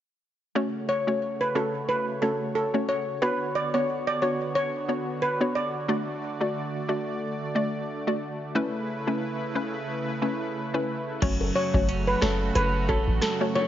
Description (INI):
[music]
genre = dancehall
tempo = 90 BPM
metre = 4/4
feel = swing 56% on 16ths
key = F# minor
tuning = A4 = 441 Hz
[part]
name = hollow square pluck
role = accompaniment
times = 0.6-13.6 s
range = A3 to D5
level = -29 LUFS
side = left 1 dB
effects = chorus
[part]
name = warm analog pad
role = sustained chords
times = 0.6-13.7 s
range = C#3 to D5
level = -32 LUFS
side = right 1 dB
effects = chorus, tremolo, sidechain pumping
[part]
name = steel pan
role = melody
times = 0.9-5.7, 11.6-13.7 s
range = A4 to D5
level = -27 LUFS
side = equal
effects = digital delay
[part]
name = twelve-string electric guitar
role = arpeggios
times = 11.2-13.7 s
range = F#2 to C#4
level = -32 LUFS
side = right 5 dB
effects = none
[part]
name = warm 808-style bass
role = bass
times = 11.2-13.2 s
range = F#1 to A1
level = -27 LUFS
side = equal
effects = none
[part]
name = booming analog drum machine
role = drums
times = 11.2-13.4 s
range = crash cymbal, hi-hat, kick drum, rim click, snare drum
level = -29 LUFS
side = equal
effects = overdrive
[part]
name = bongos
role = percussion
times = 11.4-13.7 s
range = none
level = -34 LUFS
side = left 5 dB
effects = none
[sound]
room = light reverb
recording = nothing above 7.5 kHz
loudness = -24 LUFS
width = side -11 dB against mid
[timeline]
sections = 0.6-11.2 A section; 11.2-13.7 B section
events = none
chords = 0.6 F#m; 3.2 Bmadd9; 5.9 D; 8.6 Aadd9; 11.2 F#m